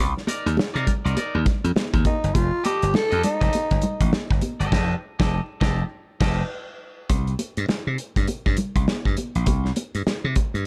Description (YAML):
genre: funk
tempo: 101 BPM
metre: 4/4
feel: swing 60% on 16ths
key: C dorian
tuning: A4 = 440 Hz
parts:
  - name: slap bass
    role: bass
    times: 0.0-10.6 s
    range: F1 to C3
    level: -26 LUFS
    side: equal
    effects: none
  - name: warm soul drum kit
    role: drums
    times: 0.2-10.7 s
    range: crash cymbal, hi-hat, kick drum, snare drum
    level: -26 LUFS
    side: equal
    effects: none
  - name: electric guitar at the edge of break-up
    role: accompaniment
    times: 0.3-6.4 s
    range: Eb4 to Eb5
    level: -33 LUFS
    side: equal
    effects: none
  - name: congas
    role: percussion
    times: 0.3-10.5 s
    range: none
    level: -31 LUFS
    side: equal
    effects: none
  - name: growling tenor saxophone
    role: melody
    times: 2.1-4.1 s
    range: Eb4 to A4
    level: -27 LUFS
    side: equal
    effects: tape echo
room: little or no reverb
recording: dark, warm production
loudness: -23 LUFS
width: mono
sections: 0.0-7.1 A section; 7.1-10.7 B section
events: band accent 4.7-7.1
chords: 0.0 Cm9; 2.4 F9; 7.1 C5